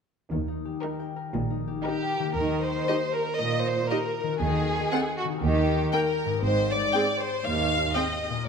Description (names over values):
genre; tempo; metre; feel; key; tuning
cinematic, playful, whimsical film cue; 118 BPM; 4/4; straight; Eb major; A4 = 439 Hz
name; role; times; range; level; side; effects
concert harp; arpeggios; 0.3-8.5 s; Ab2 to G5; -33 LUFS; left 8 dB; none
rich chamber double bass section; bass; 0.3-6.8 s; Ab1 to Eb2; -30 LUFS; right 3 dB; none
warm studio cello section; bass; 0.3-7.9 s; Eb2 to Eb3; -30 LUFS; right 3 dB; none
rich studio violin section; melody; 0.8-8.0 s; Bb4 to G5; -33 LUFS; left 4 dB; none
rich chamber violin section; second line; 0.8-8.5 s; Gb4 to F5; -27 LUFS; left 1 dB; none
rich studio viola section; accompaniment; 0.8-8.0 s; Bb3 to Bb4; -32 LUFS; right 2 dB; none
room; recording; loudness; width
moderate scoring stage reverb, RT60 1.6 s; none; -24 LUFS; side -6 dB against mid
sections
0.3-2.4 A section; 2.4-8.5 B section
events
none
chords
0.3 Eb; 4.4 Ebdim7; 5.4 Eb; 6.4 Abmaj7